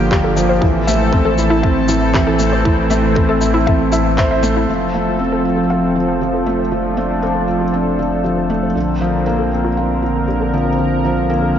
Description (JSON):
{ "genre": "piano and strings electronica", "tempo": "118 BPM", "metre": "4/4", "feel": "straight", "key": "F major", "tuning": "A4 = 441 Hz", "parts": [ { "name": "lush unison pad", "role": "sustained chords", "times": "0.0-11.6 s", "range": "D3 to Bb4", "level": "-19 LUFS", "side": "equal", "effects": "chorus" }, { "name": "felt-muted upright piano", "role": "riff", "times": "0.0-11.6 s", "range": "D3 to C5", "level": "-18 LUFS", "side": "equal", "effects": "diffuse ambient delay" }, { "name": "warm sub bass", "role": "bass", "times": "0.0-11.6 s", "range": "F1 to Bb1", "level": "-22 LUFS", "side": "equal", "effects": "sidechain pumping" }, { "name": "warbly dusty pluck", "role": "arpeggios", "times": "0.1-11.5 s", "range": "E4 to F5", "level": "-22 LUFS", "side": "left 2 dB", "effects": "chorus, sidechain pumping, diffuse ambient delay" }, { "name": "electronic handclaps and shaker", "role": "drums", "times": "0.1-4.5 s", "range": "none", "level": "-27 LUFS", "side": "left 1 dB", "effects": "none" }, { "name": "electronic kick drum", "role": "drums", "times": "0.1-4.3 s", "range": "none", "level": "-16 LUFS", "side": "equal", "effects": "none" } ], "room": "wet cathedral reverb, RT60 5.9 s", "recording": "dreamy mix soaked in reverb, nothing above 7.5 kHz", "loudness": "-13 LUFS", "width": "side -9 dB against mid", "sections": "0.0-4.7 A section; 4.7-11.6 B section", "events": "filter sweep on synth arpeggio sound 4.7-11.6", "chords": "0.0 Gm7; 0.6 Am; 4.7 F; 8.8 Bbadd9", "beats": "0.11 | 0.62 1.13 1.64 2.15 | 2.65 3.16 3.67 4.18 | 4.69 5.20 5.70 6.21 | 6.72 7.23 7.74 8.25 | 8.76 9.26 9.77 10.28 | 10.79 11.30" }